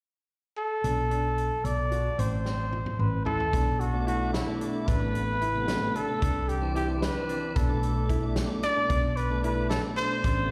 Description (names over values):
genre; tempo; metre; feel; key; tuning
progressive instrumental, band music in an uneven meter; 223 BPM (eighths); 5/8; straight; B phrygian; A4 = 435 Hz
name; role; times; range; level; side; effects
warm trumpet; melody; 0.6-10.5 s; E4 to D5; -32 LUFS; equal; slapback echo, tape echo
clear grand piano; arpeggios; 0.8-10.5 s; C4 to F#4; -40 LUFS; equal; none
hollow-body short-scale fingered electric bass; bass; 0.8-10.5 s; A1 to C2; -31 LUFS; equal; none
natural country drum kit; drums; 0.8-10.4 s; hi-hat, kick drum, snare drum, toms; -34 LUFS; equal; none
tonewheel organ; accompaniment; 3.9-10.5 s; B2 to D4; -36 LUFS; equal; chorus vibrato, slow rotary speaker
room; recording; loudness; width
light reverb, studio reverb; live gig heard through the venue's PA, recital hall reverb; -28 LUFS; mono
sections
0.8-3.5 A section; 3.5-10.5 B section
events
drum fill 2.5-3.5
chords
0.0 N.C.; 0.8 Bm7; 2.2 Am; 3.5 Bm7; 4.9 Amadd9; 6.2 Cadd9; 7.6 Bm7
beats
0.03 0.30 0.57 | 0.84 1.11 1.38 1.65 1.92 | 2.19 2.46 2.72 2.99 3.26 | 3.53 3.80 4.07 4.34 4.61 | 4.88 5.14 5.41 5.68 5.95 | 6.22 6.49 6.75 7.02 7.29 | 7.56 7.83 8.10 8.37 8.63 | 8.90 9.17 9.44 9.71 9.97 | 10.24 10.51